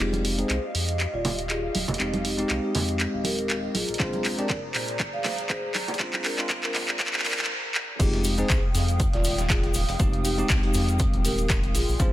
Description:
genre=deep house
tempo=120 BPM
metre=4/4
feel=swing 55% on 16ths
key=F dorian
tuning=A4 = 436 Hz
part: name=vibraphone with soft mallets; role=melody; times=0.0-12.1 s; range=D4 to F5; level=-33 LUFS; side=equal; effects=digital delay
part: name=airy breathy pad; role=sustained chords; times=0.0-12.1 s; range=Ab3 to Eb6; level=-35 LUFS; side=equal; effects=chorus, sidechain pumping
part: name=bell-like tine electric piano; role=stabs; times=0.0-12.1 s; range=Ab3 to Ab4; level=-30 LUFS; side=equal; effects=sidechain pumping, low-pass filter, digital delay
part: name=round analog bass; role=bass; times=0.0-12.1 s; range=Eb1 to Bb2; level=-29 LUFS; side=equal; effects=sidechain pumping
part: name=punchy analog drum machine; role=drums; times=0.0-12.1 s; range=crash cymbal, handclaps, hi-hat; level=-28 LUFS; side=equal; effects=none
part: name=congas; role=percussion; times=0.1-7.5 s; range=none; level=-32 LUFS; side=right 3 dB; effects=none
part: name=electronic kick drum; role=drums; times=4.0-12.1 s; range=none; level=-25 LUFS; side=equal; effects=none
part: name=dusty soul sampler-style drum kit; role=drums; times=8.0-12.1 s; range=hi-hat, snare drum, tambourine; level=-38 LUFS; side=left 1 dB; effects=overdrive, sidechain pumping on perc, high-pass filter on perc, high-pass filter on snare, sidechain pumping on hats, high-pass filter on hats, high-pass filter on room
part: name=tube shaker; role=percussion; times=8.0-12.1 s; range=none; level=-36 LUFS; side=left 4 dB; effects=none
room=light reverb, digital ambience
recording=dense, heavily limited modern master, high-pass filter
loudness=-23 LUFS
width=side -14 dB against mid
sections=0.0-8.0 A section; 8.0-12.1 B section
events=build-up 0.0-8.0; drum fill 0.0-7.5, 7.7; filter sweep on tine electric piano 0.0-8.0; filter sweep 0.0-8.0; stop 7.5-8.0; drop 8.0-12.1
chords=0.0 Fm9; 3.7 Bb9; 8.0 Fm9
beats=| 0.00 0.50 1.00 1.50 | 2.00 2.50 3.00 3.50 | 4.00 4.50 5.00 5.50 | 6.00 6.50 7.00 7.50 | 8.00 8.50 9.00 9.50 | 10.00 10.50 11.00 11.50 | 12.00

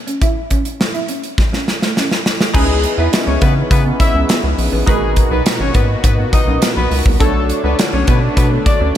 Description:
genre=early-eighties boogie funk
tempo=103 BPM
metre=4/4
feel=straight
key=C# minor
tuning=A4 = 440 Hz
part: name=mellow electric guitar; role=riff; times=0.1-8.9 s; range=G#3 to E4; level=-24 LUFS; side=right 4 dB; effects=lush chorus, slapback echo
part: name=modern studio drum kit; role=drums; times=0.1-8.8 s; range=crash cymbal, hi-hat, kick drum, snare drum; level=-15 LUFS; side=equal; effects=none
part: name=warm horn section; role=second line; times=2.5-8.9 s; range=G#3 to E5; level=-21 LUFS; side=left 3 dB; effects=slapback echo
part: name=funky polysynth comp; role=accompaniment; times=2.5-9.0 s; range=D4 to C#5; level=-21 LUFS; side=left 1 dB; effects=chorus, phaser, slapback echo
part: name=brassy analog pad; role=sustained chords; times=2.5-9.0 s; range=A#2 to F#4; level=-24 LUFS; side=left 2 dB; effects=chorus
part: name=rubbery square bass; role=bass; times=2.5-8.9 s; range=G#1 to C#3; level=-17 LUFS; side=equal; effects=none
room=light reverb, small room ambience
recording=none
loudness=-12 LUFS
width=side -11 dB against mid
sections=0.0-2.5 A section; 2.5-9.0 B section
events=drum fill 1.4-2.5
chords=0.2 Amaj7; 2.5 C#m9; 4.9 G#m9; 7.2 Bm9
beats=| 0.22 0.80 1.38 1.96 | 2.55 3.13 3.71 4.29 | 4.88 5.46 6.04 6.62 | 7.21 7.79 8.37 8.95

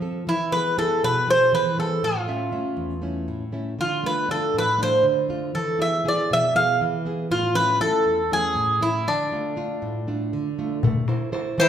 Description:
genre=greek folk, Greek bouzouki band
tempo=239 BPM (eighths)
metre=7/8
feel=straight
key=D dorian sharp4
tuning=A4 = 441 Hz
part: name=nylon-string guitar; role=accompaniment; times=0.0-11.7 s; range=E2 to E5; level=-27 LUFS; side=right 1 dB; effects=none
part: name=Greek bouzouki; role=melody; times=0.3-11.7 s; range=D4 to F5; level=-21 LUFS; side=equal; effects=none
part: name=darbuka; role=percussion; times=10.8-11.7 s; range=none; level=-23 LUFS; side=left 3 dB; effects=none
part: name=Greek bouzouki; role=second line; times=11.6-11.7 s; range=E3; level=-18 LUFS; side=left 5 dB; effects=none
room=wet large studio reverb, RT60 1.2 s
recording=band playing live in one room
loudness=-20 LUFS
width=side -9 dB against mid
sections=0.0-10.8 A section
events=none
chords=0.3 E; 2.0 A; 3.8 Dm; 5.6 E; 7.3 A; 9.1 Dm; 10.8 Am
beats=0.03 | 0.28 0.53 0.78 1.03 1.28 1.53 1.78 | 2.04 2.29 2.54 2.79 3.04 3.29 3.54 | 3.80 4.05 4.30 4.55 4.80 5.05 5.30 | 5.55 5.81 6.06 6.31 6.56 6.81 7.06 | 7.31 7.56 7.82 8.07 8.32 8.57 8.82 | 9.07 9.32 9.57 9.82 10.07 10.32 10.57 | 10.83 11.08 11.33 11.58

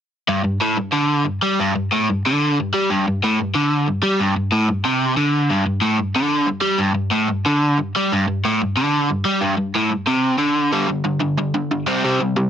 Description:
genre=punk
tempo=183 BPM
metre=4/4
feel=straight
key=unclear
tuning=A4 = 436 Hz
part: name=overdriven electric guitar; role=solo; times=0.3-12.5 s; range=G2 to C4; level=-17 LUFS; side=equal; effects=none
room=light reverb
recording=heavily compressed radio sound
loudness=-17 LUFS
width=side -9 dB against mid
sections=0.3-10.7 A section; 10.7-12.5 B section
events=none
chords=0.3 G5; 11.9 C5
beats=| 0.28 0.60 0.93 1.25 | 1.58 1.91 2.24 2.56 | 2.89 3.22 3.54 3.87 | 4.20 4.52 4.85 5.18 | 5.50 5.83 6.16 6.49 | 6.81 7.14 7.47 7.80 | 8.12 8.45 8.78 9.11 | 9.43 9.76 10.09 10.42 | 10.74 11.07 11.40 11.73 | 12.06 12.38

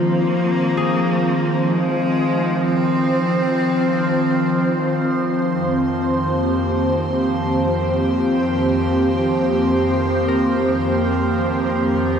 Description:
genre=ambient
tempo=free time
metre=none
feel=none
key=unclear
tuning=A4 = 439 Hz
part: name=bright cello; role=melody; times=0.0-5.0 s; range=Ab3 to C4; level=-26 LUFS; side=left 1 dB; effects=shimmer reverb, analog delay
part: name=airy breathy pad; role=sustained chords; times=0.0-12.2 s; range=F2 to C5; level=-17 LUFS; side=equal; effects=chorus, shimmer reverb
part: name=overtone-sweeping drone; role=drone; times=0.1-12.2 s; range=F3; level=-26 LUFS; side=right 2 dB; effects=chorus, built-in reverb
part: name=concert harp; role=arpeggios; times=0.8-3.0, 10.3-12.2 s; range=Ab4 to Bb4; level=-32 LUFS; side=equal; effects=shimmer reverb, analog delay
room=wet lush hall reverb, RT60 2.8 s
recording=dreamy mix soaked in reverb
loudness=-16 LUFS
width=side -7 dB against mid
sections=0.0-12.2 A section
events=fade-in on cello 0.0-12.2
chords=0.0 Fm7; 5.5 Eb6/F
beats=free time

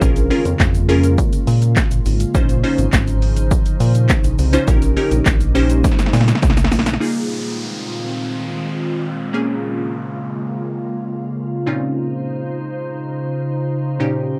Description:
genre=dance-pop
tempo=103 BPM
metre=4/4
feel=straight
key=Bb dorian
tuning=A4 = 440 Hz
part: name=glassy wavetable pluck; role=accompaniment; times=0.0-14.4 s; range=Bb2 to C5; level=-23 LUFS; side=equal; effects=chorus, sidechain pumping
part: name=glassy FM pad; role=sustained chords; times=0.0-14.4 s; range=Bb2 to C5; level=-26 LUFS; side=equal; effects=ensemble chorus, built-in reverb, sidechain pumping
part: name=chorused synth bass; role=bass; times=0.0-7.0 s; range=Ab1 to Bb2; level=-19 LUFS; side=equal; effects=sidechain pumping
part: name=punchy analog drum machine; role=drums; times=0.0-7.1 s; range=handclaps, hi-hat, kick drum, shaker, snare drum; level=-19 LUFS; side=equal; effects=vintage 12-bit sampler grit
part: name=egg shaker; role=percussion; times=0.0-7.0 s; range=none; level=-41 LUFS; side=equal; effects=none
part: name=downlifter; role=sound effects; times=7.0-11.7 s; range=none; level=-34 LUFS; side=equal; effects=none
room=light reverb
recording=none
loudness=-18 LUFS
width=mono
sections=0.0-7.0 A section; 7.0-14.4 B section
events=drop 0.0-7.0; drum fill 5.8-7.0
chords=0.0 Bbm7; 2.3 Dbmaj9; 4.7 Eb7/Bb; 7.0 Fm7/Bb; 9.3 Bbm7; 11.7 Dbmaj9/Bb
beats=| 0.02 0.60 1.18 1.76 | 2.35 2.93 3.51 4.09 | 4.68 5.26 5.84 6.42 | 7.01 7.59 8.17 8.76 | 9.34 9.92 10.50 11.09 | 11.67 12.25 12.83 13.41 | 14.00

